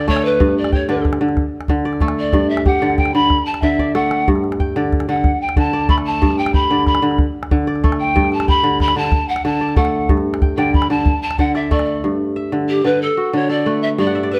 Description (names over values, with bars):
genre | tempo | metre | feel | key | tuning
west african traditional, West African string and xylophone music | 124 BPM (dotted quarters) | 12/8 | straight | G major | A4 = 440 Hz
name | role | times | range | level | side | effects
mellow pan flute | melody | 0.0-14.4 s | G4 to B5 | -21 LUFS | equal | none
kora | arpeggios | 0.0-14.4 s | G2 to G5 | -20 LUFS | equal | none
calabash | percussion | 0.0-11.9 s | none | -21 LUFS | equal | none
room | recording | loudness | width
moderate recital hall reverb, RT60 1.4 s | close, detailed microphones | -17 LUFS | mono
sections
0.0-12.0 A section; 12.0-14.4 B section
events
pan flute solo 0.0-12.0; drum fill 3.8-4.3; kora fill 14.1-14.4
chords
0.4 G5; 1.4 D5; 2.3 G5; 3.3 D; 4.3 G5; 5.2 D5; 6.2 G; 7.2 D5; 8.2 G; 9.1 D; 10.1 G5; 11.1 D5; 12.0 G5; 13.0 D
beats
| 0.40 0.88 1.37 1.85 | 2.34 2.82 3.31 3.79 | 4.28 4.76 5.25 5.73 | 6.21 6.70 7.18 7.67 | 8.15 8.64 9.12 9.61 | 10.09 10.58 11.06 11.55 | 12.03 12.52 13.01 13.49 | 13.98